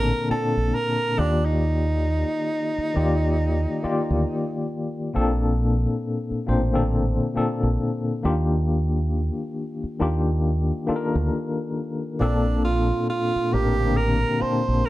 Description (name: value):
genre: R&B, neo-soul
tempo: 68 BPM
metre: 4/4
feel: swing 60% on 16ths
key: Bb major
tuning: A4 = 440 Hz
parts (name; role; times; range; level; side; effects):
- breathy tenor saxophone; melody; 0.0-4.7, 12.2-14.9 s; D4 to C5; -25 LUFS; right 2 dB; slapback echo, plate reverb
- mellow tine electric piano; accompaniment; 0.0-14.9 s; Bb2 to A5; -24 LUFS; left 2 dB; medium tremolo, plate reverb
- deep dub fingered electric bass; bass; 0.0-14.8 s; A1 to Eb2; -23 LUFS; equal; none
room: light reverb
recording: dark, warm production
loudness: -21 LUFS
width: side -16 dB against mid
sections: 0.0-14.9 A section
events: none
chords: 0.0 Bbmaj7; 1.2 Ebmaj7; 5.1 Bbmaj7; 8.2 Ebmaj7; 12.2 Bbmaj7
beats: 0.73 | 1.61 2.50 3.38 4.26 | 5.14 6.02 6.91 7.79 | 8.67 9.55 10.44 11.32 | 12.20 13.08 13.96 14.85